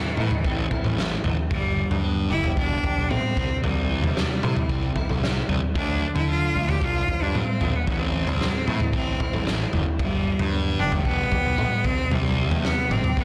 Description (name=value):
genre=quiet-loud alternative rock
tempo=113 BPM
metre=4/4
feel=straight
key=unclear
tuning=A4 = 437 Hz
part: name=bright cello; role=melody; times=0.0-13.2 s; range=E3 to G4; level=-30 LUFS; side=equal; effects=none
part: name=clean electric guitar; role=arpeggios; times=0.0-13.2 s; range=G2 to G4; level=-34 LUFS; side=equal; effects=ensemble chorus
part: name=fuzz picked electric bass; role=bass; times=0.2-13.2 s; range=E1 to D3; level=-30 LUFS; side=equal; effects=overdrive
part: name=raw garage drum kit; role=drums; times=0.2-13.2 s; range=kick drum, snare drum, toms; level=-27 LUFS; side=equal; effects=none
room=little or no reverb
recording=dense, heavily limited modern master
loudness=-24 LUFS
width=mono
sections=0.0-13.2 A section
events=none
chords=0.0 Am; 1.5 G; 3.4 C; 5.8 Dm; 7.9 Am; 10.0 G; 11.9 C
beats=0.45 0.98 | 1.51 2.04 2.57 3.10 | 3.63 4.16 4.69 5.22 | 5.75 6.29 6.82 7.35 | 7.88 8.41 8.94 9.47 | 10.00 10.53 11.06 11.59 | 12.12 12.65 13.18